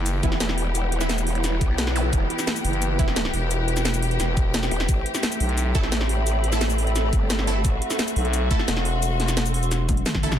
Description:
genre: dark technical drum and bass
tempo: 174 BPM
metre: 4/4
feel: straight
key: unclear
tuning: A4 = 437 Hz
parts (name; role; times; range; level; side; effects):
- rich studio string section; sustained chords; 0.0-10.4 s; E3 to G4; -30 LUFS; left 3 dB; sidechain pumping
- growling FM bass; bass; 0.0-0.2, 2.6-5.7, 8.2-10.4 s; E1 to B1; -24 LUFS; equal; none
- granular cloud pad; texture; 0.0-10.4 s; E4 to C6; -31 LUFS; right 1 dB; built-in reverb, sidechain pumping
- drum and bass drum kit; drums; 0.1-10.4 s; hi-hat, shaker, snare drum, toms; -26 LUFS; equal; none
- orchestra-hit-like synth stab; stabs; 0.2-3.2, 5.7-10.3 s; E3 to A4; -31 LUFS; right 2 dB; built-in reverb, ping-pong delay
- growl bass; bass; 0.2-2.3, 4.7-7.8 s; E1 to B1; -24 LUFS; equal; chorus, tube saturation
- electronic kick drum; drums; 0.2-10.2 s; none; -23 LUFS; equal; none
- zap; sound effects; 2.0 s; none; -34 LUFS; equal; none
room: little or no reverb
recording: dense, heavily limited modern master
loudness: -20 LUFS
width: side -10 dB against mid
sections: 0.0-10.4 A section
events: drop 0.0-10.4; drum fill 9.9-10.4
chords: 0.0 Em; 4.9 Am7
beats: 0.06 0.40 | 0.75 1.09 1.44 1.78 | 2.13 2.47 2.82 3.16 | 3.51 3.85 4.20 4.54 | 4.89 5.23 5.58 5.92 | 6.27 6.61 6.96 7.30 | 7.65 7.99 8.34 8.68 | 9.03 9.37 9.71 10.06

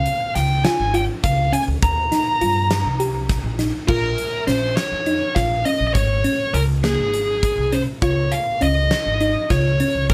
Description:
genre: progressive instrumental, band music in an uneven meter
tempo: 203 BPM (eighths)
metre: 7/8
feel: straight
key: Bb dorian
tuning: A4 = 436 Hz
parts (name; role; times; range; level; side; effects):
- dark smooth lead guitar; melody; 0.0-10.1 s; Ab4 to Bb5; -24 LUFS; equal; overdrive
- thumb-piano-like synth pluck; arpeggios; 0.0-10.1 s; Bb3 to G4; -27 LUFS; equal; chorus
- upright bass; bass; 0.0-10.1 s; Ab1 to G2; -24 LUFS; equal; none
- huge arena drum kit; drums; 0.1-10.1 s; crash cymbal, hi-hat, kick drum, snare drum; -27 LUFS; equal; none
room: light reverb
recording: none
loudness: -20 LUFS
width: mono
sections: 0.0-3.9 A section; 3.9-10.1 B section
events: none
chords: 0.0 Db; 1.8 Ebadd9; 3.9 Bbm7; 8.0 Db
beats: 0.06 0.35 0.64 0.94 1.23 1.53 | 1.82 2.12 2.41 2.70 3.00 3.29 3.59 | 3.88 4.18 4.47 4.77 5.06 5.36 5.66 | 5.95 6.25 6.54 6.84 7.13 7.43 7.73 | 8.02 8.32 8.62 8.91 9.21 9.50 9.80 | 10.10

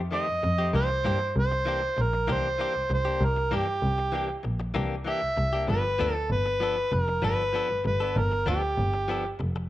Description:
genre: straight-eighth soul blues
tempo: 97 BPM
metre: 4/4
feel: straight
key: unclear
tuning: A4 = 440 Hz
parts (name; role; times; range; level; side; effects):
- rich double bass; bass; 0.0-9.5 s; F1 to G2; -28 LUFS; equal; none
- overdriven harmonica; melody; 0.1-9.4 s; G4 to E5; -27 LUFS; right 1 dB; none
- direct-recorded clean electric guitar; stabs; 0.1-9.6 s; Eb3 to A4; -33 LUFS; left 4 dB; spring reverb
room: light reverb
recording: none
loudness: -24 LUFS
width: side -14 dB against mid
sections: 0.0-9.7 A section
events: none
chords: 0.0 F9; 0.7 C9; 5.7 G9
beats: 0.12 | 0.74 1.36 1.97 2.59 | 3.21 3.83 4.45 5.07 | 5.68 6.30 6.92 7.54 | 8.16 8.78 9.40

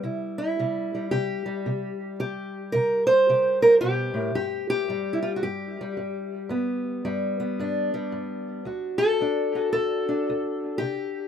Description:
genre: acoustic country blues, solo or duo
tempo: 112 BPM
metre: 4/4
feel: swing 62% on 8ths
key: G major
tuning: A4 = 440 Hz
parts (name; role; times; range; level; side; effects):
- fingerpicked steel-string acoustic guitar; solo; 0.0-11.3 s; D2 to C5; -23 LUFS; equal; tape echo
room: moderate small room ambience, RT60 0.5 s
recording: rough home demo mix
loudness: -23 LUFS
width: side -8 dB against mid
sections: 0.0-11.3 A section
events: none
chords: 0.0 C; 4.3 G; 8.6 D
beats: | 0.03 0.57 1.11 1.65 | 2.19 2.73 3.27 3.81 | 4.35 4.88 5.42 5.96 | 6.50 7.03 7.57 8.11 | 8.64 9.18 9.72 10.25 | 10.79

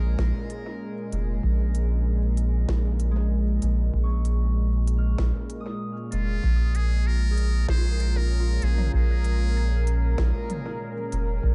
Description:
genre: ambient dub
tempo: 96 BPM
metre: 4/4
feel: straight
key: Bb minor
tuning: A4 = 440 Hz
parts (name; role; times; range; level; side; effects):
- trumpet with metal mute; melody; 0.0-0.5, 6.1-10.2 s; F4 to C5; -40 LUFS; equal; dub echo
- warm analog pad; sustained chords; 0.0-11.5 s; Bb2 to Bb4; -35 LUFS; equal; chorus, vintage 12-bit sampler grit
- Celtic harp; arpeggios; 0.0-11.1 s; Ab3 to F6; -41 LUFS; equal; dub echo
- soft dub sub bass; bass; 0.0-11.5 s; F1 to Bb1; -25 LUFS; equal; none
- electronic kick drum; drums; 0.2-11.5 s; none; -31 LUFS; equal; none
- organic electronic drum kit; drums; 0.2-11.3 s; hi-hat, snare drum, toms; -40 LUFS; equal; overdrive, dub echo
room: digital ambience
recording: echo-heavy mix, nothing above 10.8 kHz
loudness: -25 LUFS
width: mono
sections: 0.0-6.4 A section; 6.4-11.5 B section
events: none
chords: 0.0 Bbm7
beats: 0.19 0.81 | 1.44 2.06 2.69 3.31 | 3.94 4.56 5.19 5.81 | 6.44 7.06 7.69 8.31 | 8.94 9.56 10.19 10.81 | 11.44

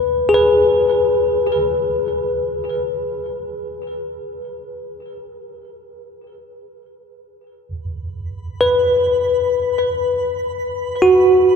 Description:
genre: ambient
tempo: free time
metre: none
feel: none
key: unclear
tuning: A4 = 440 Hz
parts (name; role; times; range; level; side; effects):
- bell-like tine electric piano; arpeggios; 0.0-11.6 s; F#4 to B4; -16 LUFS; left 1 dB; fast stereo tremolo, tape echo
- twinkling granular texture; texture; 8.6-11.6 s; B5; -33 LUFS; right 7 dB; built-in reverb
room: moderate cathedral reverb, RT60 5.7 s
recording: dark, warm production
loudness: -15 LUFS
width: side -6 dB against mid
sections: 0.0-7.7 A section; 7.7-11.6 B section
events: none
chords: 0.0 G#m; 7.7 B5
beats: free time

